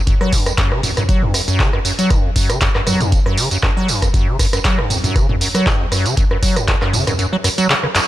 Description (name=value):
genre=acid house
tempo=118 BPM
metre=4/4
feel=swing 54% on 16ths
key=unclear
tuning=A4 = 445 Hz
part: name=acid bass, square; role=riff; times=0.1-8.0 s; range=E2 to F#3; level=-19 LUFS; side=equal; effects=tube saturation, analog chorus, sidechain pumping, tape echo
part: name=electronic kick drum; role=drums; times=0.1-6.8 s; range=none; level=-17 LUFS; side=equal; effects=none
part: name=punchy analog drum machine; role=drums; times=0.1-8.1 s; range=handclaps, hi-hat, rim click, tambourine, toms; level=-18 LUFS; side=right 1 dB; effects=none
room=light reverb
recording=none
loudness=-14 LUFS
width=side -14 dB against mid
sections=0.0-8.1 A section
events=kick drops out 7.2-8.1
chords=none